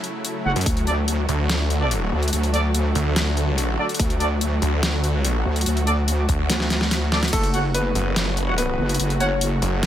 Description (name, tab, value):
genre	heavy wobble dubstep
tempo	144 BPM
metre	4/4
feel	half-time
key	unclear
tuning	A4 = 440 Hz
part	supersaw pad	sustained chords	0.0-9.9 s	C#3 to F#4	-28 LUFS	equal	sidechain pumping
part	dubstep drum kit	drums	0.0-9.9 s	crash cymbal, hi-hat, snare drum	-25 LUFS	left 1 dB	overdrive
part	warm brass ensemble	stabs	0.5-9.3 s	D4 to F#5	-28 LUFS	right 2 dB	tape echo
part	wobble bass	bass	0.5-9.6 s	F#1 to D2	-22 LUFS	equal	chorus, overdrive
part	snarling distorted saw bass	bass	0.6-9.9 s	F#1 to F#2	-22 LUFS	equal	distortion, overdrive
part	electronic kick drum	drums	0.7, 4.0-7.4 s	none	-23 LUFS	equal	none
part	clear concert grand piano	melody	7.3-9.4 s	A3 to C#5	-26 LUFS	left 2 dB	tape echo
room	little or no reverb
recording	none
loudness	-19 LUFS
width	side -11 dB against mid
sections	0.0-9.9 A section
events	drum fill 6.5-7.3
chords	0.0 F#m; 0.7 D; 7.3 F#m